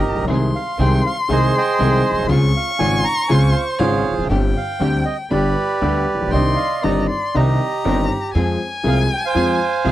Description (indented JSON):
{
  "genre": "tango",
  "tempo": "119 BPM",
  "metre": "4/4",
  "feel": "rubato",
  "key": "C minor",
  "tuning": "A4 = 439 Hz",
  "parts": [
    { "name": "bandoneon", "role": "melody", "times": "0.0-9.9 s", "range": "F4 to Bb5", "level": "-21 LUFS", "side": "right 4 dB", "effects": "none" },
    { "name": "warm violin", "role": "second line", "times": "0.0-9.9 s", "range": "F5 to Db6", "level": "-24 LUFS", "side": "left 3 dB", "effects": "none" },
    { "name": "warm upright piano", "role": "accompaniment", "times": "0.1-9.9 s", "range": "G1 to Ab4", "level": "-21 LUFS", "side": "left 3 dB", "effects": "none" },
    { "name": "upright bass", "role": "bass", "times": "0.1-9.9 s", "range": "E1 to F2", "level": "-20 LUFS", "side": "right 1 dB", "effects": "none" },
    { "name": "warm chamber string section", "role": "stabs", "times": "0.3-9.9 s", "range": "B3 to Ab4", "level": "-29 LUFS", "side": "right 3 dB", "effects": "none" }
  ],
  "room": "light reverb",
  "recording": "dry, close 1970s-style studio recording",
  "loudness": "-15 LUFS",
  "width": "side -14 dB against mid",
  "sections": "0.0-9.9 A section",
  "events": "none",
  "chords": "0.3 Ab/C; 2.3 Dbmaj7; 4.3 Gsus4; 5.3 G; 6.3 Cmadd9; 8.4 Fm"
}